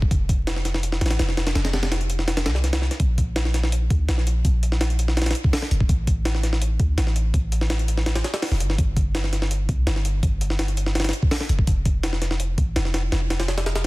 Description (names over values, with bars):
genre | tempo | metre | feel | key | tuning
drum and bass, jungle | 166 BPM | 4/4 | straight | unclear | A4 = 439 Hz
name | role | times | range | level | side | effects
warm 808-style bass | bass | 0.0-13.9 s | E1 to D2 | -22 LUFS | equal | none
jungle sampler-style drum kit | drums | 0.0-13.9 s | hi-hat, kick drum, snare drum | -23 LUFS | equal | none
room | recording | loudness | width
digital ambience | dense, heavily limited modern master, vinyl crackle | -20 LUFS | side -21 dB against mid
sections
0.0-13.9 A section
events
none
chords
none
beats
| 0.11 0.47 0.83 1.19 | 1.55 1.92 2.28 2.64 | 3.00 3.36 3.72 4.09 | 4.45 4.81 5.17 5.53 | 5.89 6.25 6.62 6.98 | 7.34 7.70 8.06 8.42 | 8.78 9.15 9.51 9.87 | 10.23 10.59 10.95 11.31 | 11.68 12.04 12.40 12.76 | 13.12 13.48 13.85